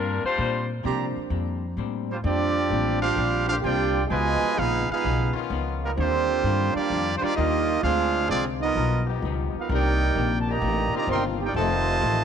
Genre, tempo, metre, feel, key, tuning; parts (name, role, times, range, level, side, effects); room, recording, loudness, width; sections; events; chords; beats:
jazz; 129 BPM; 4/4; swing 68% on 8ths; Bb major; A4 = 440 Hz
clear saxophone section; melody; 0.0-0.7 s; G3 to C5; -27 LUFS; left 3 dB
vintage hollow-body jazz guitar; accompaniment; 0.0-12.2 s; F2 to F4; -33 LUFS; left 12 dB
upright bass; bass; 0.0-12.2 s; F1 to C3; -27 LUFS; left 1 dB
warm upright piano; accompaniment; 0.8-1.6 s; F3 to G4; -34 LUFS; right 9 dB
clear trumpet section; stabs; 0.8-1.1 s; G4 to Bb5; -34 LUFS; right 7 dB
warm trumpet section; melody; 2.1-12.2 s; G3 to C6; -26 LUFS; equal
dark trombone section; second line; 2.1-12.2 s; Cb3 to G4; -27 LUFS; right 11 dB
bright trombone section; sustained chords; 3.5-11.8 s; D3 to Bb4; -34 LUFS; left 10 dB
light reverb, small room reverb; 1960s-style stereo with parts hard left and right, nothing above 10.7 kHz; -22 LUFS; side -8 dB against mid
0.0-2.3 A section; 2.3-12.2 B section
0.0 Bb69; 4.1 Db9; 6.0 Ebmaj9; 7.8 Dm7b5; 8.8 G7alt; 9.7 Cm9; 11.5 F7
| 0.39 0.85 1.32 1.78 | 2.25 2.72 3.18 3.65 | 4.11 4.58 5.04 5.51 | 5.97 6.44 6.90 7.37 | 7.83 8.30 8.76 9.23 | 9.69 10.15 10.62 11.08 | 11.55 12.01